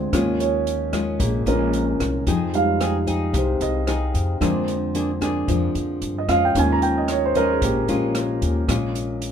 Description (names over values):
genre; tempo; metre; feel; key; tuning
bossa nova; 112 BPM; 4/4; straight; unclear; A4 = 439 Hz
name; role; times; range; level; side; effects
nylon-string guitar; accompaniment; 0.0-9.3 s; Bb2 to Ab4; -25 LUFS; left 3 dB; none
warm concert grand piano; accompaniment; 0.0-8.7 s; D3 to Bb5; -22 LUFS; right 3 dB; none
upright bass; bass; 0.0-9.3 s; Bb1 to G2; -25 LUFS; left 1 dB; none
open jazz drum kit; drums; 0.1-9.3 s; hi-hat, kick drum, rim click; -28 LUFS; equal; none
room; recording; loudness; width
light reverb; minimal, uncompressed stereo recording; -19 LUFS; side -8 dB against mid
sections
0.0-9.3 A section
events
grand piano solo 0.0-9.3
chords
0.1 Eb9sus4; 2.3 Fm7; 4.4 Bb7/F; 6.5 Eb9sus4; 8.7 Bbm7